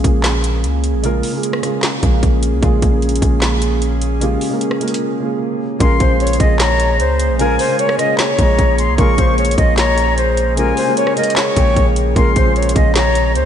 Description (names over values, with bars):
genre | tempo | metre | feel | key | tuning
hip hop, trap | 151 BPM | 4/4 | half-time | Bb minor | A4 = 440 Hz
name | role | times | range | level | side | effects
dark concert grand piano | accompaniment | 0.0-13.5 s | Db3 to Bb4 | -21 LUFS | right 1 dB | wide subtle chorus
warbly tape-like pad | sustained chords | 0.0-13.5 s | Bb3 to Ab4 | -23 LUFS | right 1 dB | chorus, built-in reverb
long sustained 808-style bass | bass | 0.0-13.5 s | Bb1 to Db2 | -17 LUFS | equal | none
trap drum kit | drums | 0.0-13.4 s | handclaps, hi-hat, kick drum, rim click, snare drum | -18 LUFS | equal | none
breathy silver concert flute | melody | 5.8-13.5 s | Bb4 to Eb5 | -18 LUFS | left 1 dB | tape echo
silver concert flute | second line | 5.8-13.3 s | G5 to Db6 | -21 LUFS | left 4 dB | tape echo
room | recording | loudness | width
moderate lush hall reverb, RT60 2.1 s | dreamy mix soaked in reverb, nothing above 10.4 kHz | -13 LUFS | side -9 dB against mid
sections
0.0-5.8 A section; 5.8-13.5 B section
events
break 5.0-5.8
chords
0.0 Bbm7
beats
0.24 0.64 | 1.04 1.43 1.83 2.23 | 2.62 3.02 3.42 3.82 | 4.21 4.61 5.01 5.41 | 5.80 6.20 6.60 7.00 | 7.39 7.79 8.19 8.59 | 8.98 9.38 9.78 10.18 | 10.57 10.97 11.37 11.76 | 12.16 12.56 12.96 13.35